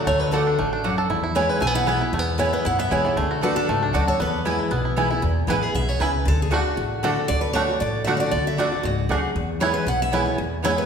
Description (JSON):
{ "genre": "bluegrass", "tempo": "233 BPM", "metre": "4/4", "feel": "straight", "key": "E mixolydian", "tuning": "A4 = 440 Hz", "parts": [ { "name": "picked steel-string acoustic guitar", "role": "melody", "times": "0.0-10.9 s", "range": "F#4 to G#5", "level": "-25 LUFS", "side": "equal", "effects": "none" }, { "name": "picked steel-string acoustic guitar", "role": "accompaniment", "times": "0.0-10.9 s", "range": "E2 to F#4", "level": "-26 LUFS", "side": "left 2 dB", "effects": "none" }, { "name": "bluegrass banjo", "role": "arpeggios", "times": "0.0-10.7 s", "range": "E3 to A4", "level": "-27 LUFS", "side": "right 2 dB", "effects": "none" }, { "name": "upright bass", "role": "bass", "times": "0.1-10.8 s", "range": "A1 to F#2", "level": "-27 LUFS", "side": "equal", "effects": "none" }, { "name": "mandolin", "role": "stabs", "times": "0.3-10.7 s", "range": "A3 to G#5", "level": "-28 LUFS", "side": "right 3 dB", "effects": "none" } ], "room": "wet recital hall reverb, RT60 1.6 s", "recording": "recorded in a church or concert hall", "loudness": "-20 LUFS", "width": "side -6 dB against mid", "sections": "0.0-5.2 A section; 5.2-10.9 A section", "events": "none", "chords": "0.0 D; 1.1 E; 3.2 D; 4.2 E; 6.3 D; 9.4 E" }